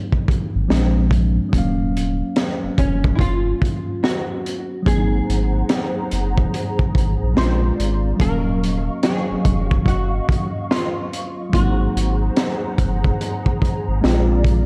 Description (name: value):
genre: lo-fi hip hop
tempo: 72 BPM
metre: 4/4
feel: swing 63% on 16ths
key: Eb dorian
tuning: A4 = 440 Hz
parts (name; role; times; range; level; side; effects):
- tine electric piano; accompaniment; 0.0-14.7 s; F3 to F5; -27 LUFS; equal; low-pass filter
- crunchy breakbeat drum kit; drums; 0.1-14.7 s; hi-hat, kick drum, snare drum; -23 LUFS; equal; none
- saturated sub bass; bass; 0.6-14.7 s; Eb1 to Bb1; -22 LUFS; equal; none
- archtop guitar, miked and amplified; melody; 2.8-13.2 s; Db4 to C5; -30 LUFS; equal; ensemble chorus, low-pass filter, analog delay
- hollow soft pad; sustained chords; 4.9-14.7 s; Gb3 to Db6; -31 LUFS; equal; ensemble chorus, low-pass filter
room: light reverb, studio reverb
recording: none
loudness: -20 LUFS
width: mono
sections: 0.0-14.7 A section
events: break 0.0-4.9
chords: 0.0 Ab9; 0.7 Bb7; 1.5 Ebm9; 4.9 Ab9; 7.4 Bb7; 8.2 Ebm9; 11.5 Ab9; 14.0 Bb7